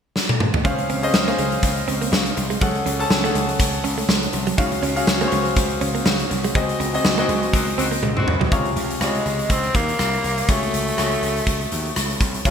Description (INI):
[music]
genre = 1980s-style pop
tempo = 122 BPM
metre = 4/4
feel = swing 55% on 16ths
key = Db major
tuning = A4 = 440 Hz
[part]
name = big rock drum kit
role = drums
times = 0.2-12.5 s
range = hi-hat, kick drum, rim click, snare drum, toms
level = -21 LUFS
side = equal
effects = gated reverb
[part]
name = clear concert grand piano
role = accompaniment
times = 0.6-12.5 s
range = C3 to A5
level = -24 LUFS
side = left 2 dB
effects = none
[part]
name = gritty slap bass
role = bass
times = 0.6-12.5 s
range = C2 to Eb2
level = -26 LUFS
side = equal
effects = overdrive
[part]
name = direct-recorded clean electric guitar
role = riff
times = 0.7-8.5 s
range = Gb3 to Eb4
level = -28 LUFS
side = right 6 dB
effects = wide subtle chorus
[part]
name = clear horn section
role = stabs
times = 7.2-8.5 s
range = Eb3 to Gb4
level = -28 LUFS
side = left 3 dB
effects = none
[part]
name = raspy tenor saxophone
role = melody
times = 9.0-12.2 s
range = Ab3 to C4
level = -24 LUFS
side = equal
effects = ping-pong delay
[sound]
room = wet lush hall reverb, RT60 1.7 s, small room ambience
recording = bright 1980s-style digital production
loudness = -18 LUFS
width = side -7 dB against mid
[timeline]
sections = 0.6-8.5 A section; 8.5-12.5 B section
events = drum fill 0.2-0.6, 8.0-8.5; band accent 6.5-8.5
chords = 0.0 N.C.; 0.6 Dbmaj7; 2.6 Gbmadd9/Db; 4.6 Ebm11/Db (rootless); 6.5 Ab7/Db; 8.5 Dbmaj7; 10.5 Gbmadd9/Db